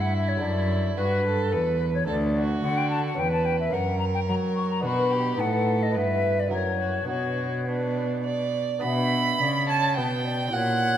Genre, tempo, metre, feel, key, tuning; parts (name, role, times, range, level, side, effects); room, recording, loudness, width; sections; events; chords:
classical, baroque-style sonata movement with continuo; 108 BPM; 3/4; straight; B minor; A4 = 441 Hz
silver concert flute; melody; 0.0-11.0 s; A4 to C#6; -29 LUFS; left 4 dB
rich violin; second line; 0.0-11.0 s; D4 to B5; -28 LUFS; right 3 dB
lute; accompaniment; 0.0-11.0 s; D2 to C#5; -32 LUFS; left 1 dB
rich cello; bass; 0.0-11.0 s; D2 to F#3; -27 LUFS; right 1 dB
wet concert hall reverb, RT60 2.0 s; -22 LUFS; side -10 dB against mid
0.0-8.8 A section; 8.8-11.0 B section
0.4 D/F#; 2.1 D; 3.2 Em6; 3.7 F#; 4.8 Bm; 5.4 B7/A; 6.0 Em/G; 6.5 F#7; 7.1 Bm